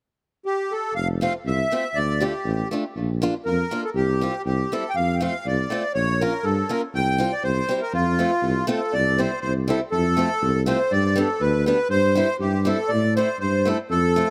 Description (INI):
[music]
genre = alpine folk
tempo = 120 BPM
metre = 2/4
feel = swing 53% on 8ths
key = F major, C major from 8.9 s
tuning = A4 = 438 Hz
[part]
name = accordion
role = melody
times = 0.5-14.3 s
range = F4 to G5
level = -26 LUFS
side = equal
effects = light tremolo tuning, analog delay
[part]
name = mellow tuba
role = bass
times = 0.9-14.2 s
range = F1 to A2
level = -26 LUFS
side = equal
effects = none
[part]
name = picked acoustic archtop guitar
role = accompaniment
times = 1.2-14.3 s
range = G3 to F4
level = -30 LUFS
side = equal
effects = analog delay
[sound]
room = light reverb, small room ambience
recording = echo-heavy mix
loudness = -23 LUFS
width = mono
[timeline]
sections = 1.0-8.9 A section; 8.9-14.3 B section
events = none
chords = 0.0 N.C.; 1.0 F; 2.0 Dm; 3.0 Bb; 4.0 Csus4; 4.5 C; 5.0 F; 6.0 Bbm; 6.9 Csus4; 7.4 C; 7.9 F; 8.9 C; 9.9 F; 10.9 G; 11.9 C/G; 12.9 Am